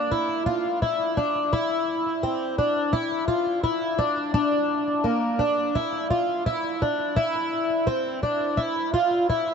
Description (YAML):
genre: dream pop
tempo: 85 BPM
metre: 4/4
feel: straight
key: unclear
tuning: A4 = 440 Hz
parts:
  - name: fingerpicked plugged-in twelve-string acoustic guitar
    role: solo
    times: 0.0-9.5 s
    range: Bb3 to F4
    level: -22 LUFS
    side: equal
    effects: wide subtle chorus, ping-pong delay
room: moderate huge ambient reverb, RT60 6.3 s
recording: dark, warm production, nothing above 7.9 kHz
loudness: -22 LUFS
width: side -6 dB against mid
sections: 0.0-9.5 A section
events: none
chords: none